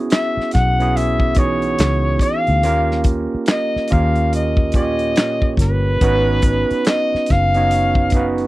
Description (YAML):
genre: R&B, neo-soul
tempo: 71 BPM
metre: 4/4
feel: swing 63% on 16ths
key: G# dorian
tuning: A4 = 439 Hz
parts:
  - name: overdriven tine electric piano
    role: accompaniment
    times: 0.0-8.5 s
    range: A#2 to C#5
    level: -21 LUFS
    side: right 3 dB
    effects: none
  - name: clear flugelhorn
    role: melody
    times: 0.1-8.3 s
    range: B4 to F#5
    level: -20 LUFS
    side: left 1 dB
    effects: slapback echo
  - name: warm soul drum kit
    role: drums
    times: 0.1-8.5 s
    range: handclaps, hi-hat, kick drum, snare drum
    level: -17 LUFS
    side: equal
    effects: none
  - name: vintage muted fingered electric bass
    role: bass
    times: 0.4-8.5 s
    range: F#1 to D#2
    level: -19 LUFS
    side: equal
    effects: none
room: little or no reverb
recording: dry, close 1970s-style studio recording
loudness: -14 LUFS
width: side -18 dB against mid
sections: 0.0-8.5 A section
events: none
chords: 0.0 C#m7; 2.6 D#7; 6.0 G#m7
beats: 0.10 0.94 1.79 | 2.63 3.48 4.33 5.17 | 6.02 6.86 7.71